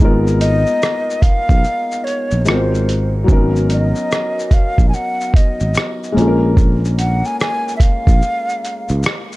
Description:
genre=lo-fi hip hop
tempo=73 BPM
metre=4/4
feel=swing 64% on 16ths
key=G# dorian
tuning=A4 = 440 Hz
part: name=felt-muted upright piano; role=accompaniment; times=0.0-9.4 s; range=F#3 to A#4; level=-20 LUFS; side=left 2 dB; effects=cassette tape
part: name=sustaining fretless electric bass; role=bass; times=0.0-9.0 s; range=G#1 to C#2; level=-16 LUFS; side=equal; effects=none
part: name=lo-fi sampler-style drum kit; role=drums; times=0.0-9.4 s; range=hi-hat, kick drum, rim click, shaker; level=-14 LUFS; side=equal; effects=none
part: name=breathy mellow silver concert flute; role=melody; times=0.4-9.0 s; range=B#4 to G#5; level=-21 LUFS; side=equal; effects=none
room=digital ambience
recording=cassette tape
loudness=-13 LUFS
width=side -19 dB against mid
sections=0.0-9.4 A section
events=none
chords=0.0 G#m69; 2.5 G#13; 3.3 C#13sus4/G#; 6.2 A#m7

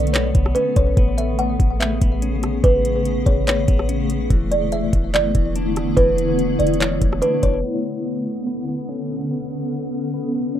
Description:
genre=hip hop, atmospheric cloud-rap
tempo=144 BPM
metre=4/4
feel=half-time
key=B dorian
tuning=A4 = 442 Hz
part: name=kalimba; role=melody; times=0.0-7.6 s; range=B4 to F#5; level=-22 LUFS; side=right 1 dB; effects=low-pass filter, ping-pong delay
part: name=granular cloud pad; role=sustained chords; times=0.0-10.6 s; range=C#3 to A4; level=-23 LUFS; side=left 1 dB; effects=built-in reverb, sidechain pumping
part: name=clean electric guitar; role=arpeggios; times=0.0-10.6 s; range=E3 to D4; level=-30 LUFS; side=left 3 dB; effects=low-pass filter, ping-pong delay
part: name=clean 808-style bass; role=bass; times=0.0-7.6 s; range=E1 to B1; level=-22 LUFS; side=equal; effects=none
part: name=smooth R&B drum kit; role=drums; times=0.0-7.5 s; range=handclaps, hi-hat, kick drum, rim click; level=-20 LUFS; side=equal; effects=none
room=light reverb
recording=rough home demo mix, low-pass filter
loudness=-17 LUFS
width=side -11 dB against mid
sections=0.0-7.6 A section; 7.6-10.6 B section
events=filter sweep 7.6-10.6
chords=0.0 Bm9; 1.0 Amaj9; 4.3 E7sus4; 7.6 Bm9

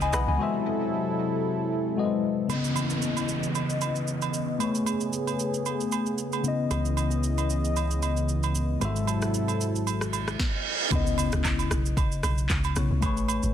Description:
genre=amapiano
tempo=114 BPM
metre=4/4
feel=swing 55% on 16ths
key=C# minor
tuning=A4 = 439 Hz
part: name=tine electric piano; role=accompaniment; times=0.0-13.5 s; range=C#3 to B5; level=-29 LUFS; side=left 5 dB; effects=phaser, low-pass filter
part: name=warm analog pad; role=sustained chords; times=0.0-10.4 s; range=B#2 to D#5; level=-30 LUFS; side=right 1 dB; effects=chorus, sidechain pumping, low-pass filter
part: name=deep log drum bass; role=bass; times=0.0-0.4, 10.9-13.5 s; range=G#1 to C#2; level=-28 LUFS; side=equal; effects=none
part: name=afro-pop drum kit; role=drums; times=0.0-13.5 s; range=handclaps, kick drum, rim click, shaker, snare drum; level=-31 LUFS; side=right 1 dB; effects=none
part: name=agogo bells and woodblock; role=percussion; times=0.0-13.4 s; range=none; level=-35 LUFS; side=right 11 dB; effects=none
part: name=downlifter, reverse cymbal and impact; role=sound effects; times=2.5-6.7, 10.1-13.0 s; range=none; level=-33 LUFS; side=right 2 dB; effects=none
part: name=plucky analog bass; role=bass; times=6.7-10.4 s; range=G#1 to C#2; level=-28 LUFS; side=equal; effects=none
room=light reverb, digital ambience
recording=dense, heavily limited modern master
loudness=-24 LUFS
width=side -10 dB against mid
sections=0.0-2.5 A section; 2.5-10.9 B section; 10.9-13.5 A section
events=drop 0.0-2.5, 10.9-13.5; break 0.4-2.5; filter sweep 2.5-10.9; reverse cymbal 10.1-10.9; impact 10.9-13.0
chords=0.4 G#7b9b13; 2.5 C#m9; 4.6 Amaj9; 6.4 C#m9; 8.8 G#7b9b13; 10.9 C#m9; 13.0 Amaj9

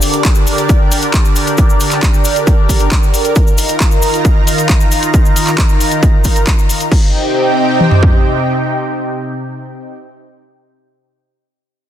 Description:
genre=uplifting trance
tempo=135 BPM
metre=4/4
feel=straight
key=C minor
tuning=A4 = 438 Hz
part: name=lush unison pad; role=sustained chords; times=0.0-9.9 s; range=C3 to Bb5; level=-15 LUFS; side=equal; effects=chorus, phaser, sidechain pumping
part: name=techno drum kit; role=drums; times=0.0-7.0 s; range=crash cymbal, handclaps, hi-hat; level=-20 LUFS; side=equal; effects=overdrive, sidechain pumping on hats, sidechain pumping on cymbals
part: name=cabasa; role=percussion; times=0.0-6.9 s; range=none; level=-24 LUFS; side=left 5 dB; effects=none
part: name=techno drum kit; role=drums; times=0.2-8.1 s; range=kick drum, toms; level=-11 LUFS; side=equal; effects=overdrive
room=little or no reverb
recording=dense, heavily limited modern master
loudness=-10 LUFS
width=side -11 dB against mid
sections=0.0-6.9 A section; 6.9-10.5 B section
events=none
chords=0.0 Gm/D; 3.4 Ebsus2; 6.9 Cm

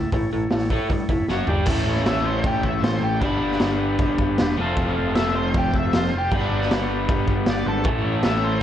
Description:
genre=garage rock duo or trio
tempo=155 BPM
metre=4/4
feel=straight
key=A mixolydian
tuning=A4 = 440 Hz
part: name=combo organ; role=sustained chords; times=0.0-8.6 s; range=C#4 to B5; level=-33 LUFS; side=equal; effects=none
part: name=crunchy overdriven guitar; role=riff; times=0.0-8.6 s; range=A2 to B4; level=-23 LUFS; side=equal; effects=none
part: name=growling picked electric bass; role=bass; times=0.0-8.6 s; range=E1 to G2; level=-27 LUFS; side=equal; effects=overdrive
part: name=raw garage drum kit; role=drums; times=0.1-8.3 s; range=crash cymbal, hi-hat, kick drum, snare drum, toms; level=-24 LUFS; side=equal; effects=vintage 12-bit sampler grit
part: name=octave-fuzz lead guitar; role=melody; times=2.1-8.6 s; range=D4 to E5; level=-26 LUFS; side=left 1 dB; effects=distortion
room=light reverb, small room ambience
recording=cassette tape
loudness=-19 LUFS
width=side -10 dB against mid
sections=0.0-1.7 A section; 1.7-8.6 B section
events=transistor combo organ fill 0.9-1.7; drum fill 1.3-1.7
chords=0.0 A; 1.3 F#5; 1.5 G5; 1.7 A; 3.2 G; 4.6 F; 6.3 G; 7.9 A

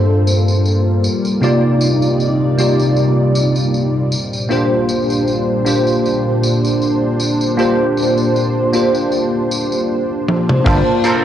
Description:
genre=vaporwave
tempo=78 BPM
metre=4/4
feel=swing 54% on 16ths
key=Bb major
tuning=A4 = 440 Hz
part: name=bell-like tine electric piano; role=accompaniment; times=0.0-11.2 s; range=G2 to A5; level=-15 LUFS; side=equal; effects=fast stereo tremolo, analog chorus, vintage 12-bit sampler grit, tape echo
part: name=lush unison pad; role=sustained chords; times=0.0-11.2 s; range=Bb2 to F5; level=-19 LUFS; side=equal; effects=chorus, phaser
part: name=big rock drum kit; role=drums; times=0.3-11.2 s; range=crash cymbal, hi-hat, tambourine, toms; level=-23 LUFS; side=equal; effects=none
part: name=gritty slap bass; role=bass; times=10.7-10.8 s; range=G1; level=-15 LUFS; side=equal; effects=overdrive
part: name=kick drum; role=drums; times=10.7-10.8 s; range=none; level=-19 LUFS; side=equal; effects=none
part: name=clean electric guitar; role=riff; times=11.0-11.2 s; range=F4 to C5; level=-15 LUFS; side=right 1 dB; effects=ensemble chorus, vintage 12-bit sampler grit
room=moderate lush hall reverb, RT60 1.8 s, small room ambience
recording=cassette tape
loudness=-13 LUFS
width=side -10 dB against mid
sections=0.0-10.7 A section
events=filter sweep on analog synth pad 0.0-10.7; drum fill 10.3-10.7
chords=0.0 Gm11; 1.0 Cm11; 4.1 Bb69; 10.7 Gm11

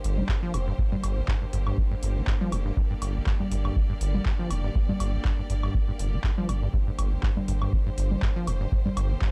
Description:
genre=acid house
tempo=121 BPM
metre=4/4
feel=swing 55% on 16ths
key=G minor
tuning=A4 = 440 Hz
part: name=bright studio string section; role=sustained chords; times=0.0-9.3 s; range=D3 to D5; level=-40 LUFS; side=equal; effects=sidechain pumping
part: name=acid bass, saw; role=riff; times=0.0-9.3 s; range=G1 to G3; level=-34 LUFS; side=equal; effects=tube saturation, dub echo
part: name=saturated sub bass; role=bass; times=0.0-9.2 s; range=F1 to G1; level=-29 LUFS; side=equal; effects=sidechain pumping
part: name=booming analog drum machine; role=drums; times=0.0-9.3 s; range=congas, handclaps, hi-hat, woodblock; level=-35 LUFS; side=equal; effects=none
part: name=electronic kick drum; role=drums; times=0.3-9.3 s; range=none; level=-28 LUFS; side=equal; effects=none
room=little or no reverb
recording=dark, warm production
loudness=-26 LUFS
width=mono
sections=0.0-9.3 A section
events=none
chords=0.0 Gm

